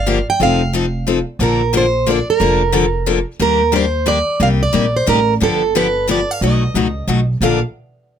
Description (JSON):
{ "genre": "acoustic string swing (jazz manouche)", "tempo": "180 BPM", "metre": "3/4", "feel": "swing 61% on 8ths", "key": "Bb major", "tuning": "A4 = 440 Hz", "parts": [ { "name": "picked plugged-in steel-string acoustic guitar", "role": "melody", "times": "0.0-7.6 s", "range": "A4 to G5", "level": "-17 LUFS", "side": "right 4 dB", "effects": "none" }, { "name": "upright bass", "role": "bass", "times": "0.0-7.6 s", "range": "F1 to Eb2", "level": "-19 LUFS", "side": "right 1 dB", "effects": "none" }, { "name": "picked steel-string acoustic guitar", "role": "accompaniment", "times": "0.1-7.6 s", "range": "Bb2 to A4", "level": "-17 LUFS", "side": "left 6 dB", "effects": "none" } ], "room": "light reverb", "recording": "close, detailed microphones", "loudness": "-13 LUFS", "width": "side -8 dB against mid", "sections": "0.0-3.4 A section; 3.4-7.4 B section", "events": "none", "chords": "0.4 F7; 1.4 Bbmaj7; 3.4 Ebmaj7; 4.4 Cm9; 5.4 G7; 6.4 B9; 7.4 Bbmaj7", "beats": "0.06 | 0.40 0.73 1.07 | 1.40 1.73 2.07 | 2.40 2.74 3.07 | 3.40 3.74 4.07 | 4.41 4.74 5.07 | 5.41 5.74 6.08 | 6.41 6.75 7.08 | 7.42" }